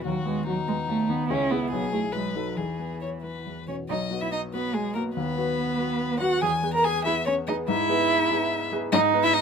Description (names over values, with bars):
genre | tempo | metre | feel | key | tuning
quick classical-period movement for piano trio | 143 BPM | 3/4 | rubato | E major, B major from 3.9 s | A4 = 440 Hz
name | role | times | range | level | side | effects
muted violin | melody | 0.0-9.4 s | D#4 to A#5 | -28 LUFS | left 5 dB | none
muted cello | second line | 0.0-9.4 s | E3 to A#4 | -26 LUFS | right 5 dB | none
warm baby grand piano | accompaniment | 0.0-9.4 s | B1 to B4 | -29 LUFS | left 3 dB | none
room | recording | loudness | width
little or no reverb | close, detailed microphones | -23 LUFS | side -6 dB against mid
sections
0.0-3.9 A section; 3.9-9.4 B section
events
none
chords
0.1 B/D#; 1.3 C#m7; 1.7 E/B; 2.1 B7; 2.6 E; 3.9 B5; 5.2 B/D#; 6.4 E; 7.7 E/G#